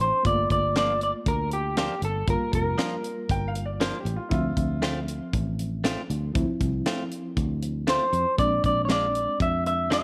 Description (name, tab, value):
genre	straight-eighth soul blues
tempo	118 BPM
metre	4/4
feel	swing 55% on 16ths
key	D minor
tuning	A4 = 441 Hz
part	electric guitar through a small old amp	melody	0.0-3.5, 7.9-10.0 s	G4 to E5	-27 LUFS	equal	none
part	reed electric piano	accompaniment	0.0-10.0 s	F3 to E5	-35 LUFS	equal	fast tremolo
part	fingered electric bass	bass	0.0-10.0 s	F1 to F2	-31 LUFS	equal	none
part	tight funk drum kit	drums	0.0-10.0 s	hi-hat, kick drum, snare drum	-32 LUFS	equal	none
part	direct-recorded clean electric guitar	stabs	0.8-10.0 s	F3 to F4	-34 LUFS	equal	none
part	warm upright piano	second line	3.3-5.3 s	E4 to G5	-38 LUFS	equal	none
room	light reverb, studio reverb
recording	none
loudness	-26 LUFS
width	mono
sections	0.0-10.0 A section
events	none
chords	0.2 Gm7; 4.3 Dm7; 8.4 Bb7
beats	| 0.25 0.76 1.26 1.77 | 2.28 2.79 3.30 3.81 | 4.32 4.83 5.33 5.84 | 6.35 6.86 7.37 7.88 | 8.39 8.89 9.40 9.91